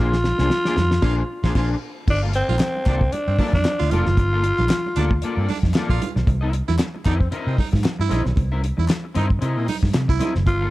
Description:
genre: funk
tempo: 114 BPM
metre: 4/4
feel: swing 56% on 16ths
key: unclear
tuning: A4 = 441 Hz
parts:
  - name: raspy tenor saxophone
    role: melody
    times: 0.0-5.5, 10.5-10.7 s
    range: C4 to F4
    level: -23 LUFS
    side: equal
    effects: none
  - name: electric guitar at the edge of break-up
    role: accompaniment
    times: 0.0-10.7 s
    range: Bb3 to F5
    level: -29 LUFS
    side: left 3 dB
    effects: ensemble chorus
  - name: vintage muted fingered electric bass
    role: bass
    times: 0.0-10.7 s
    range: F1 to C3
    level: -21 LUFS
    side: equal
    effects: none
  - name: damped 70s drum kit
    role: drums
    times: 0.1-10.6 s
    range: crash cymbal, hi-hat, kick drum, snare drum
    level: -22 LUFS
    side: equal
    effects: none
  - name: congas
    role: percussion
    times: 0.1-10.7 s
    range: none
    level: -31 LUFS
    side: right 5 dB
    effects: none
  - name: breathy baritone saxophone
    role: second line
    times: 1.0-10.3 s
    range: C4 to F4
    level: -31 LUFS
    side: right 8 dB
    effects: none
  - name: group handclap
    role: percussion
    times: 2.6-10.1 s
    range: none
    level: -38 LUFS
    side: left 2 dB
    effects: none
room: small room ambience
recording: dark, warm production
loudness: -18 LUFS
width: side -18 dB against mid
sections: 0.0-2.1 A section; 2.1-10.7 B section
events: drum fill 0.0-2.1; band accent 0.0-2.1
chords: 0.0 Bb9; 2.1 Gm9; 6.3 C7#9

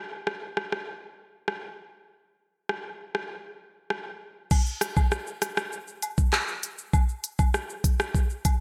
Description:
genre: dancehall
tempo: 99 BPM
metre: 4/4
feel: straight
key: none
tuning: none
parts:
  - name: island pop drum kit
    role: drums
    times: 0.3-8.6 s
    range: crash cymbal, handclaps, hi-hat, kick drum, rim click, shaker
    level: -28 LUFS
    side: equal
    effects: gated reverb
  - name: woodblock and cabasa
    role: percussion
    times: 4.5-8.6 s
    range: none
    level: -37 LUFS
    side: equal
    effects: none
room: light reverb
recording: bright 1980s-style digital production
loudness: -28 LUFS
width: mono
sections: 0.0-4.5 A section; 4.5-8.6 B section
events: none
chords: none

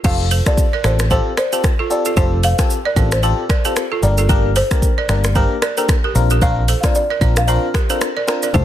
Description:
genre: afrobeats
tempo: 113 BPM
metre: 4/4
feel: swing 58% on 16ths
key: F major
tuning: A4 = 440 Hz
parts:
  - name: barking FM electric piano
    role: accompaniment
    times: 0.0-8.6 s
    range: Bb3 to Bb4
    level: -22 LUFS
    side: left 5 dB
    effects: chorus
  - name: balafon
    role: riff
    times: 0.0-8.6 s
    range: F4 to D5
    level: -23 LUFS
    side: right 6 dB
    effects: none
  - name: hollow-body short-scale fingered electric bass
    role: bass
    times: 0.0-8.6 s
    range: F1 to Bb1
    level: -16 LUFS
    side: equal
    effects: none
  - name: afro-pop drum kit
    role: drums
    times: 0.0-8.6 s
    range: crash cymbal, finger snaps, hi-hat, kick drum, rim click, shaker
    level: -18 LUFS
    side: equal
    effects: soft clipping on snare
  - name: folk marimba with medium mallets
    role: melody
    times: 0.1-8.6 s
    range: C5 to F5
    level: -23 LUFS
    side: equal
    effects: digital delay
  - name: congas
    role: percussion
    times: 8.5-8.6 s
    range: none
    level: -15 LUFS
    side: equal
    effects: none
room: digital ambience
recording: dense, heavily limited modern master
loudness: -14 LUFS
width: side -11 dB against mid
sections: 0.0-8.6 A section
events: none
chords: 0.0 Fadd9; 4.0 Gm; 6.2 Bbadd9

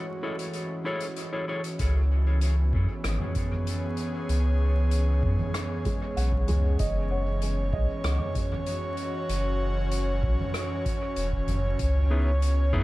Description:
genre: ambient dub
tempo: 96 BPM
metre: 4/4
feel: straight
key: C# minor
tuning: A4 = 439 Hz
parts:
  - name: airy breathy pad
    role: sustained chords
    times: 0.0-12.8 s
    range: E3 to C#5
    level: -32 LUFS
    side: equal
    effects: chorus
  - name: felt-muted upright piano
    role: arpeggios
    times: 0.0-11.8 s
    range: G#3 to F#5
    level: -38 LUFS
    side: right 2 dB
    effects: dub echo
  - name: mellow electric guitar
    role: stabs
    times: 0.2-1.6, 12.1-12.8 s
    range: B3 to C#5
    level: -36 LUFS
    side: left 2 dB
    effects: low-pass filter, dub echo
  - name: soft-mallet drum kit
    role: drums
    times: 0.4-12.5 s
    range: hi-hat, rim click, toms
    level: -34 LUFS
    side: right 1 dB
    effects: none
  - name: warm sub bass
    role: bass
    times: 1.8-12.8 s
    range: E1 to F#2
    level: -24 LUFS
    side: equal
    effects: tube saturation
  - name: electronic kick drum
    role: drums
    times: 1.8-12.8 s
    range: none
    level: -31 LUFS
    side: equal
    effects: none
room: light reverb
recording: vinyl crackle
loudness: -24 LUFS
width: side -18 dB against mid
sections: 0.0-1.8 A section; 1.8-12.8 B section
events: none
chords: 0.0 F#m7; 1.8 C#m7; 6.8 F#5; 11.8 C#m7

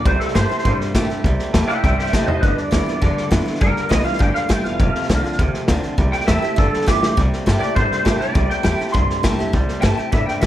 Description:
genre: rockabilly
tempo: 202 BPM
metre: 4/4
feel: straight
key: C mixolydian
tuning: A4 = 437 Hz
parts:
  - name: electric guitar through a small old amp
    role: melody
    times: 0.0-10.5 s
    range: G4 to C6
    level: -22 LUFS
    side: right 1 dB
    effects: ensemble chorus, tape echo
  - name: picked steel-string acoustic guitar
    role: accompaniment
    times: 0.0-10.5 s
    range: F2 to G4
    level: -26 LUFS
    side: left 3 dB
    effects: none
  - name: twangy electric guitar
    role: riff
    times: 0.0-10.5 s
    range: F2 to A3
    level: -25 LUFS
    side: right 3 dB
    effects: none
  - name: upright bass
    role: bass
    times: 0.0-10.5 s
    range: E1 to Bb2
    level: -22 LUFS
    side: equal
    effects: none
  - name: vintage drum kit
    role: drums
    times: 0.1-10.5 s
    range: hi-hat, kick drum, snare drum, toms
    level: -20 LUFS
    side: equal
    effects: none
room: little or no reverb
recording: none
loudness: -16 LUFS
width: side -12 dB against mid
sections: 0.0-7.2 A section; 7.2-10.5 A section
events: drum fill 2.1, 6.9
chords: 0.1 C7; 2.4 G7; 4.8 F7; 6.0 C7; 6.6 G7; 7.2 C7

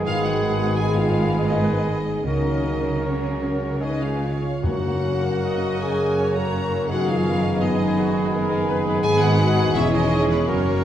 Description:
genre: classical, slow romantic movement for symphony orchestra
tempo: 73-85 BPM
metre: 3/4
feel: rubato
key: unclear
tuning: A4 = 443 Hz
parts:
  - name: dark clarinet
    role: second line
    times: 0.0-10.8 s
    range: G#3 to F#4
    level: -34 LUFS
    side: left 1 dB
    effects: none
  - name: mellow hollow concert flute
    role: second line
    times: 0.0-10.8 s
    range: B5 to C#6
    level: -34 LUFS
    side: left 1 dB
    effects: none
  - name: rich chamber violin section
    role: second line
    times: 0.0-10.8 s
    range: G#3 to F#4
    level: -33 LUFS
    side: left 2 dB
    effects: none
  - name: warm oboe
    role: second line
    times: 0.0-10.8 s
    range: F#4 to A#4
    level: -35 LUFS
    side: right 2 dB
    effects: none
  - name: rich symphonic viola section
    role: accompaniment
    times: 0.0-10.8 s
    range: F#4 to D#5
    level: -32 LUFS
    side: right 2 dB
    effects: none
  - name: warm bassoon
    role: accompaniment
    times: 0.0-10.8 s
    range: D#3 to A#3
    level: -33 LUFS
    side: right 2 dB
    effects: none
  - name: warm trombone section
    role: sustained chords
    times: 0.0-10.8 s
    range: C#3 to C#4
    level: -31 LUFS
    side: right 4 dB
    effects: none
  - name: concert harp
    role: arpeggios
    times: 0.0-10.8 s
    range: E2 to D#6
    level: -28 LUFS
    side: left 4 dB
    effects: none
  - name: mellow trumpet section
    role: stabs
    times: 0.0-10.8 s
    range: G#4 to A#4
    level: -28 LUFS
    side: right 2 dB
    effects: none
  - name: clear chamber double bass section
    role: bass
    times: 0.0-10.8 s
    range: E1 to C#2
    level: -27 LUFS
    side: right 2 dB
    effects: none
  - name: rich chamber cello section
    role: bass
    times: 0.0-10.8 s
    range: E2 to C#3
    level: -27 LUFS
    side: right 2 dB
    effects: none
  - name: rich studio violin section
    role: melody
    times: 0.1-10.8 s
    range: B4 to A#5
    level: -31 LUFS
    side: left 2 dB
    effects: none
  - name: dark French horn section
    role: sustained chords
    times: 0.1-10.8 s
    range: B3 to A#4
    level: -27 LUFS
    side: left 3 dB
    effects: none
  - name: timpani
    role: percussion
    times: 4.6-5.8 s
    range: F#2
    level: -29 LUFS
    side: equal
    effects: none
room: wet recital hall reverb, RT60 1.5 s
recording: dark, warm production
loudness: -19 LUFS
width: side -10 dB against mid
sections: 0.0-10.8 A section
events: none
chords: 0.1 G#m; 2.3 F#/C#; 3.8 C#; 4.6 F#; 6.9 G#m7/F#; 9.0 G#m; 9.8 C#m/E

